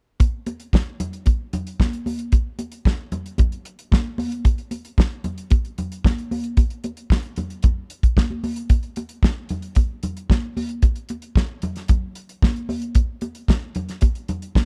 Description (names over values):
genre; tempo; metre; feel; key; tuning
disco; 113 BPM; 4/4; straight; none; none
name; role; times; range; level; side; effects
damped 70s drum kit; drums; 0.2-14.7 s; hi-hat, kick drum, snare drum; -19 LUFS; equal; none
congas; percussion; 0.2-14.7 s; none; -31 LUFS; equal; none
room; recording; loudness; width
little or no reverb; dark, warm production; -22 LUFS; mono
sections
0.2-14.7 A section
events
none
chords
none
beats
| 0.20 0.73 1.26 1.79 | 2.33 2.86 3.39 3.92 | 4.45 4.98 5.51 6.04 | 6.58 7.11 7.64 8.17 | 8.70 9.23 9.76 10.29 | 10.83 11.36 11.89 12.42 | 12.95 13.49 14.02 14.55